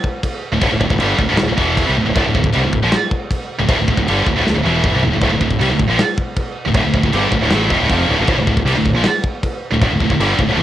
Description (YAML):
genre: heavy metal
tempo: 157 BPM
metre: 4/4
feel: straight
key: D minor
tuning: A4 = 436 Hz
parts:
  - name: modern studio drum kit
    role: drums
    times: 0.0-10.6 s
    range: crash cymbal, kick drum, snare drum, toms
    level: -19 LUFS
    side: equal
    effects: cassette tape
  - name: heavy high-gain guitar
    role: riff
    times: 0.5-10.6 s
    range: D2 to A3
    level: -18 LUFS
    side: right 6 dB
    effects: distortion, cassette tape
  - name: scooped high-gain guitar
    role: riff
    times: 0.5-10.6 s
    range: D2 to A3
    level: -19 LUFS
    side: left 7 dB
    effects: distortion, cassette tape
  - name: growling fingered electric bass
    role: bass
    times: 0.5-10.6 s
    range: D1 to C2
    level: -20 LUFS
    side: equal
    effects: overdrive
  - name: distorted electric guitar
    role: riff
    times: 5.2-10.6 s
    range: D2 to A3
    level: -23 LUFS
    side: equal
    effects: distortion, cassette tape
room: studio ambience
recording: home recording on cassette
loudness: -14 LUFS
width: side -12 dB against mid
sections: 0.0-10.6 A section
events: drum fill 4.5-5.2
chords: 0.0 Dm